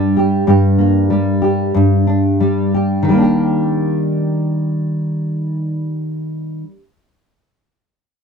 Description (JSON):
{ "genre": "pop", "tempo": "86-98 BPM", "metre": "4/4", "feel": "straight", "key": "Eb major", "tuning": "A4 = 440 Hz", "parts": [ { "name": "nylon-string guitar", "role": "accompaniment", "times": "0.0-6.8 s", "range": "G2 to G4", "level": "-14 LUFS", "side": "equal", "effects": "double-tracked left and right" } ], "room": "light reverb", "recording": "dry, close 1970s-style studio recording", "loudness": "-14 LUFS", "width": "side -6 dB against mid", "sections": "0.0-3.1 A section; 3.1-5.9 B section", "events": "slowing down 0.0-3.1", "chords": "0.0 Gm; 3.1 Ebmaj7", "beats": "| 0.47 1.09 1.74 2.40 | 3.08 3.77 4.47 5.16" }